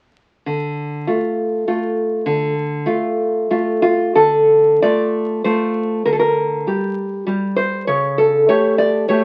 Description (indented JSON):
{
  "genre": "romantic piece for solo classical guitar",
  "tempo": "97 BPM",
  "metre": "3/4",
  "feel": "uneven beats, rubato",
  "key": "D minor",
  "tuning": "A4 = 440 Hz",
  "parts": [
    { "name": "nylon-string guitar", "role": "solo", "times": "0.5-9.2 s", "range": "C#3 to D5", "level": "-17 LUFS", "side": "equal", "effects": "none" }
  ],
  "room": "moderate studio reverb, RT60 0.7 s",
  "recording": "very old 78 rpm record, vinyl crackle",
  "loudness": "-18 LUFS",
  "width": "mono",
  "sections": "0.5-4.2 A section; 4.2-9.2 B section",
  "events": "none",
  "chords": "0.5 Dm; 6.1 Gm/D; 7.9 A7/C#"
}